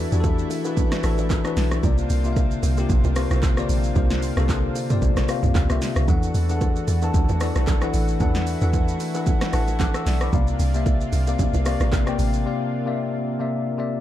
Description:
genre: amapiano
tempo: 113 BPM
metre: 4/4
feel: swing 55% on 16ths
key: unclear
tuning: A4 = 440 Hz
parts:
  - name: bell-like tine electric piano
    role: accompaniment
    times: 0.0-14.0 s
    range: C3 to F#6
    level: -25 LUFS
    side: left 4 dB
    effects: none
  - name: lush unison pad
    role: sustained chords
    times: 0.0-14.0 s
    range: C3 to F#4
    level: -32 LUFS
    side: right 2 dB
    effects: chorus
  - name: deep log drum bass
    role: bass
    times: 0.0-12.5 s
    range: A1 to E2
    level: -22 LUFS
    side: equal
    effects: none
  - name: deep house drum kit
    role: drums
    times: 0.1-12.4 s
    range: handclaps, hi-hat, kick drum, rim click, shaker, snare drum, toms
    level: -24 LUFS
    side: equal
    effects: none
  - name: bongos and congas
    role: percussion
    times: 0.2-12.1 s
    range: none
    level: -32 LUFS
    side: right 9 dB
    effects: none
room: digital ambience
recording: dark, warm production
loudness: -19 LUFS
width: side -12 dB against mid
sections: 0.0-14.0 A section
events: tine electric piano fill 9.3-10.3; break 12.5-14.0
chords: 0.0 E9sus4; 1.8 C9sus4; 6.1 E9sus4; 10.3 C9sus4

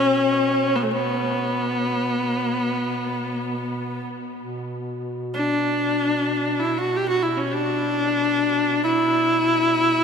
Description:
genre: caucasian folk, Caucasian lament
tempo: free time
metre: none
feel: none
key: B minor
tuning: A4 = 436 Hz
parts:
  - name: clear viola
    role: melody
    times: 0.0-10.0 s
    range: A3 to G4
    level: -20 LUFS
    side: left 1 dB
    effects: ping-pong delay
  - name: dark duduk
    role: drone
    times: 0.0-10.0 s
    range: B2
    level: -31 LUFS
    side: right 2 dB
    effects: none
room: wet huge ambient reverb, RT60 6.1 s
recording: dreamy mix soaked in reverb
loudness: -20 LUFS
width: side -6 dB against mid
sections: 0.0-4.4 A section; 4.4-10.0 A section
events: none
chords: none

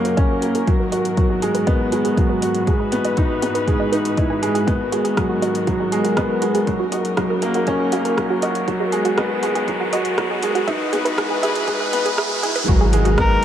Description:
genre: piano and strings electronica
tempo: 120 BPM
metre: 4/4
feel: straight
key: G# minor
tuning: A4 = 440 Hz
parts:
  - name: dark studio string section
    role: sustained chords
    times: 0.0-13.4 s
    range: F#2 to B4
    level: -26 LUFS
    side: left 2 dB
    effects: none
  - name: wide unison pluck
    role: arpeggios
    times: 0.0-13.3 s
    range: F#4 to G#5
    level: -26 LUFS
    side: right 3 dB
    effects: sidechain pumping, digital delay
  - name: felt-muted upright piano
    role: riff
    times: 0.0-13.4 s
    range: F#3 to G#4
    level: -20 LUFS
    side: right 1 dB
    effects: digital delay
  - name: deep house drum kit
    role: drums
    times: 0.1-13.4 s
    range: hi-hat, rim click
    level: -28 LUFS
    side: equal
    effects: none
  - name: electronic kick drum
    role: drums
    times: 0.2-13.3 s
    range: none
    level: -20 LUFS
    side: equal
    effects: none
  - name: riser and impact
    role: sound effects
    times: 6.8-13.4 s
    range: none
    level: -28 LUFS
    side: equal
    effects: none
  - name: warm sub bass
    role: bass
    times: 12.7-13.4 s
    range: G#1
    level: -18 LUFS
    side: equal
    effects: sidechain pumping
  - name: warm viola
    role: melody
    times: 13.2-13.4 s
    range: A#4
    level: -17 LUFS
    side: left 2 dB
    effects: none
room: moderate huge ambient reverb, RT60 9.0 s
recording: dark, warm production, high-pass filter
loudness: -17 LUFS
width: side -10 dB against mid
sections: 0.0-12.7 A section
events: build-up 0.0-12.7; filter sweep on synth arpeggio sound 0.0-12.7; filter sweep 0.0-12.7; riser 6.8-12.7; impact 12.7-13.4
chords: 0.0 D#m7/F#; 0.7 G#m7; 2.7 Emaj7/G#; 4.7 G#m7; 6.7 D#m7/F#; 8.7 G#m7; 10.7 Emaj7/G#; 12.7 G#m7

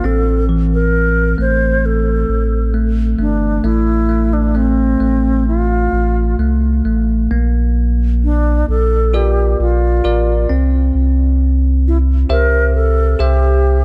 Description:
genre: pop ballad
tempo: 67 BPM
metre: 4/4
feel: straight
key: unclear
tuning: A4 = 444 Hz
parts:
  - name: alto flute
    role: melody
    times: 0.0-13.8 s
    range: C4 to C5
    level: -21 LUFS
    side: equal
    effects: tape echo
  - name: bell-like tine electric piano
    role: accompaniment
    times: 0.0-13.8 s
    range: E3 to E5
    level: -22 LUFS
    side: equal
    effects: none
  - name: warm sub bass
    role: bass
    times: 0.0-13.8 s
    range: G1 to C2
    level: -17 LUFS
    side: equal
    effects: none
room: light reverb, studio reverb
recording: dark, warm production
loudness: -15 LUFS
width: mono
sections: 0.0-7.3 A section; 7.3-13.8 B section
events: none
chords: 0.0 Am; 3.6 F/A; 7.3 Bb; 10.5 C

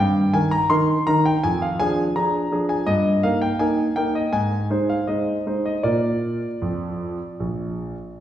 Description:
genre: classical-period piano sonatina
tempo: 77-84 BPM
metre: 4/4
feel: rubato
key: Eb major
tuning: A4 = 440 Hz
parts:
  - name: clear concert grand piano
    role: solo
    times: 0.0-8.2 s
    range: Bb1 to C6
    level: -19 LUFS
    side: equal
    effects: none
room: wet recital hall reverb, RT60 1.6 s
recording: heard from further back in the room, nothing above 10.6 kHz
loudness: -19 LUFS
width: side -11 dB against mid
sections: 0.0-8.2 A section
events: none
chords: 0.0 Eb/G; 1.4 Ddim/F; 2.9 Eb/G; 4.3 Ab; 5.8 Bb

